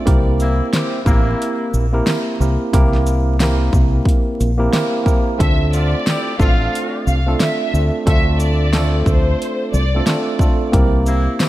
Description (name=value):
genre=hip hop, boom-bap hip-hop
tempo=90 BPM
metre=4/4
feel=swing 59% on 16ths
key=D minor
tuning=A4 = 440 Hz
part: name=tine electric piano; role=accompaniment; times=0.0-11.5 s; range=A3 to Bb4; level=-20 LUFS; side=right 2 dB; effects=medium stereo tremolo, cassette tape, high-pass filter, low-pass filter
part: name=deep dub fingered electric bass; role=bass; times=0.1-11.3 s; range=A1 to D2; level=-17 LUFS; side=equal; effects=none
part: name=pop drum kit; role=drums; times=0.1-11.5 s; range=hi-hat, kick drum, shaker, snare drum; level=-17 LUFS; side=equal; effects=none
part: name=warm horn section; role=stabs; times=0.4-1.7, 5.7-7.0, 11.1-11.5 s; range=C3 to G4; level=-27 LUFS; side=left 2 dB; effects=high-pass filter, low-pass filter, diffuse ambient delay
part: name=tambourine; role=percussion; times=0.7-11.5 s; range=none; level=-38 LUFS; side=left 6 dB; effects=none
part: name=rich studio violin section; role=melody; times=5.4-10.0 s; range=C5 to F5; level=-24 LUFS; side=left 1 dB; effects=high-pass filter, low-pass filter, diffuse ambient delay
room=light reverb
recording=vinyl crackle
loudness=-14 LUFS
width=side -15 dB against mid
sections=0.0-11.5 A section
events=none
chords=0.1 C7; 5.4 Dm7; 10.7 C7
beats=| 0.07 0.73 1.40 2.07 | 2.73 3.40 4.07 4.73 | 5.40 6.07 6.73 7.40 | 8.07 8.73 9.40 10.07 | 10.73 11.40